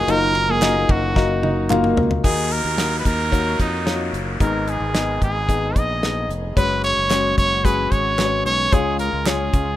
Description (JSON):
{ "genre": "piano-driven pop", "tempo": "111 BPM", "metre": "4/4", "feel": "straight", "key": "unclear", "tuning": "A4 = 441 Hz", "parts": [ { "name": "bright trumpet", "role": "melody", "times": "0.0-9.8 s", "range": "D#4 to D#5", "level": "-21 LUFS", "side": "right 2 dB", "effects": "plate reverb" }, { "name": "warm concert grand piano", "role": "accompaniment", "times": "0.0-9.8 s", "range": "G#2 to E#5", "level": "-24 LUFS", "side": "left 6 dB", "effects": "plate reverb" }, { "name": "warm studio string section", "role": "sustained chords", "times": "0.0-9.8 s", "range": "C#3 to G#4", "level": "-35 LUFS", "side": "left 1 dB", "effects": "none" }, { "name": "modern bright fingered electric bass", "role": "bass", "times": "0.0-9.8 s", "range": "E#1 to E#2", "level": "-25 LUFS", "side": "equal", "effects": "none" }, { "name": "fingerpicked steel-string acoustic guitar", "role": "riff", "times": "0.1-2.1 s", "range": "A#3 to D#4", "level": "-23 LUFS", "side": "right 4 dB", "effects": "none" }, { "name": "damped 70s drum kit", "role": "drums", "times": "0.1-9.7 s", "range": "hi-hat, kick drum, ride cymbal, snare drum, toms", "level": "-21 LUFS", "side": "equal", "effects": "none" }, { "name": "group handclap", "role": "percussion", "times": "0.6-1.8, 7.1-9.4 s", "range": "none", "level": "-30 LUFS", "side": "right 4 dB", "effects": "none" }, { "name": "downlifter", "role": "sound effects", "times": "2.2-6.6 s", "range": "none", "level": "-30 LUFS", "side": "equal", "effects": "none" } ], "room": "light reverb", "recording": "rough home demo mix", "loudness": "-17 LUFS", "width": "side -13 dB against mid", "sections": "0.0-2.2 A section; 2.2-9.8 B section", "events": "drum fill 1.2-2.2", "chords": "0.0 D#madd9; 4.4 G#m; 6.6 F#sus2; 8.7 C#" }